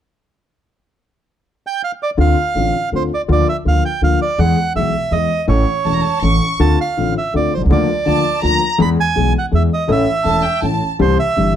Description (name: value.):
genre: tango.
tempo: 164 BPM.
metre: 3/4.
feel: rubato.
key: D minor.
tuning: A4 = 442 Hz.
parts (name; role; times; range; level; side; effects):
bandoneon; melody; 1.7-11.5 s; C5 to B5; -19 LUFS; right 4 dB; none.
dark concert grand piano; accompaniment; 2.2-11.5 s; E1 to A4; -17 LUFS; left 4 dB; none.
upright bass; bass; 2.2-11.5 s; E1 to E2; -18 LUFS; right 1 dB; none.
warm chamber violin section; second line; 5.8-10.9 s; G5 to C#6; -20 LUFS; right 1 dB; none.
room: moderate studio reverb, RT60 0.6 s.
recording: dark, warm production.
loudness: -14 LUFS.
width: side -10 dB against mid.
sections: 1.1-2.2 A section; 2.2-6.6 B section; 6.6-11.6 C section.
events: none.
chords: 1.1 N.C.; 2.2 Dm7; 3.3 Bb/D; 4.4 E; 5.5 A; 6.6 Dm7; 7.7 Bb/D; 8.8 E; 9.9 A; 11.0 C.